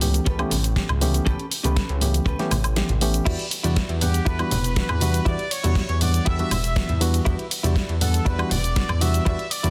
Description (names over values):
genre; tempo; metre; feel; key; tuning
nu-disco, nu disco; 120 BPM; 4/4; straight; E dorian; A4 = 440 Hz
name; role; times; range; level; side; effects
barky reed electric piano; accompaniment; 0.0-9.7 s; E3 to F#5; -30 LUFS; equal; overdrive, sidechain pumping
chorused synth bass; bass; 0.0-9.7 s; E1 to E2; -25 LUFS; equal; none
pop drum kit; drums; 0.0-9.7 s; crash cymbal, hi-hat, ride cymbal, shaker, snare drum, woodblock; -30 LUFS; equal; none
congas; percussion; 0.0-9.7 s; none; -33 LUFS; equal; none
direct-recorded clean electric guitar; riff; 0.3-9.7 s; C#4 to D5; -34 LUFS; equal; lush chorus
kick drum; drums; 0.3-9.4 s; none; -26 LUFS; equal; none
brilliant trumpet section; melody; 4.0-9.7 s; G4 to E5; -32 LUFS; equal; digital delay
room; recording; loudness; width
light reverb, small room reverb; dense, heavily limited modern master; -22 LUFS; mono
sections
0.0-9.7 A section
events
kick drops out 2.8-3.3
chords
0.0 A9; 3.3 Em9